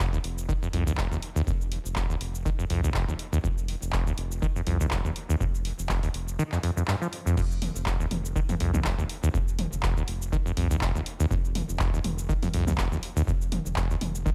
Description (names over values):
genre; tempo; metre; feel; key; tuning
acid house; 122 BPM; 4/4; swing 55% on 16ths; unclear; A4 = 437 Hz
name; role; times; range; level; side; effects
acid bass, saw; riff; 0.0-14.3 s; F1 to F3; -31 LUFS; equal; cassette tape, sidechain pumping, tape echo
round analog bass; bass; 0.0-14.3 s; F1 to C2; -35 LUFS; equal; sidechain pumping
electronic kick drum; drums; 0.0-14.3 s; none; -32 LUFS; equal; none
punchy analog drum machine; drums; 0.0-14.3 s; crash cymbal, handclaps, hi-hat, shaker, toms; -36 LUFS; equal; none
room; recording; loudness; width
digital ambience; none; -28 LUFS; mono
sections
0.0-7.4 A section; 7.4-14.3 B section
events
drop 7.4-14.3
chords
0.0 F5